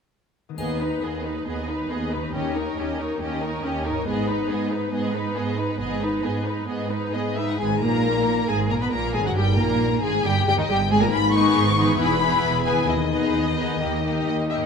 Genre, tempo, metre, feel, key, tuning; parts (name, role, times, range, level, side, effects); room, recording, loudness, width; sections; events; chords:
classical, dramatic, fast romantic movement for symphony orchestra; 137 BPM; 4/4; rubato; G# minor; A4 = 441 Hz
concert harp; arpeggios; 0.5-14.7 s; G2 to A#4; -29 LUFS; left 8 dB
warm symphonic violin section; melody; 0.6-14.7 s; B4 to C#6; -28 LUFS; left 4 dB
warm symphonic violin section; second line; 0.6-14.7 s; D#4 to D#5; -28 LUFS; left 3 dB
rich symphonic viola section; accompaniment; 0.6-14.7 s; D#3 to E4; -27 LUFS; right 1 dB
warm symphonic cello section; bass; 0.6-14.7 s; D#2 to B2; -28 LUFS; right 4 dB
warm symphonic double bass section; bass; 0.6-14.7 s; E1 to D#2; -28 LUFS; right 4 dB
triangle; percussion; 0.6-1.4 s; -46 LUFS; left 2 dB
wet concert hall reverb, RT60 1.9 s; -20 LUFS; side -6 dB against mid
0.6-7.6 A section; 7.6-14.7 B section
0.6 G#m/D#; 2.3 D#7; 4.1 G#m; 9.4 D#7/G; 11.1 G#m; 12.0 E; 12.9 G#m/D#; 13.8 D#